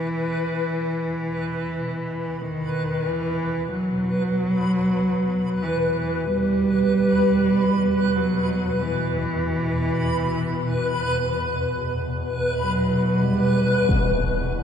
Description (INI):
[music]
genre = dark ambient drone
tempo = free time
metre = none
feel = none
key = E minor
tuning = A4 = 440 Hz
[part]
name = dark cello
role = melody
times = 0.0-13.9 s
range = D#3 to G3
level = -23 LUFS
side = right 1 dB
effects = ping-pong delay
[part]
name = swarming drone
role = drone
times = 0.0-14.6 s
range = E2 to B2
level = -29 LUFS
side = left 1 dB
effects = built-in reverb
[part]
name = backwards swelling texture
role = texture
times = 0.0-14.6 s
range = B4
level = -26 LUFS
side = left 1 dB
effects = built-in reverb, wide subtle chorus
[part]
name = deep dark ambient pad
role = sustained chords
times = 14.2-14.6 s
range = E4 to F#5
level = -40 LUFS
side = left 1 dB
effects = none
[part]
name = impact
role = percussion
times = 13.9-14.1 s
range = none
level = -23 LUFS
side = left 1 dB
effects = low-pass filter on sfx
[sound]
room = moderate plate reverb, RT60 2.8 s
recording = dreamy mix soaked in reverb, cassette tape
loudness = -20 LUFS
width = side -8 dB against mid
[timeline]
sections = 0.0-14.6 A section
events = fade-in on synth drone 0.0-14.6; fade-in on impacts and reversed cymbals 0.0-14.6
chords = 0.0 E5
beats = free time